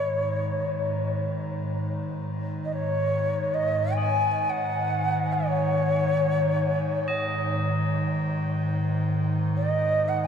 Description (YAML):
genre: world meditative, free-time meditation music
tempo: free time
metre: none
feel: none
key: G# minor pentatonic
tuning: A4 = 440 Hz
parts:
  - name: mellow Native American-style cedar flute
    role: melody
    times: 0.0-10.3 s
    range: C#5 to G#5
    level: -26 LUFS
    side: equal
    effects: tape echo
  - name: evolving wavetable pad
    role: drone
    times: 0.0-10.3 s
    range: G#2 to D#3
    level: -26 LUFS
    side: equal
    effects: chorus, built-in reverb
  - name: tubular bells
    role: texture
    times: 0.0-10.3 s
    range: G#4 to D#5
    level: -36 LUFS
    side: left 1 dB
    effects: none
room: wet cathedral reverb, RT60 6.6 s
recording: dreamy mix soaked in reverb, cassette tape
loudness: -23 LUFS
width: side -7 dB against mid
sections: 0.0-10.3 A section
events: none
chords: none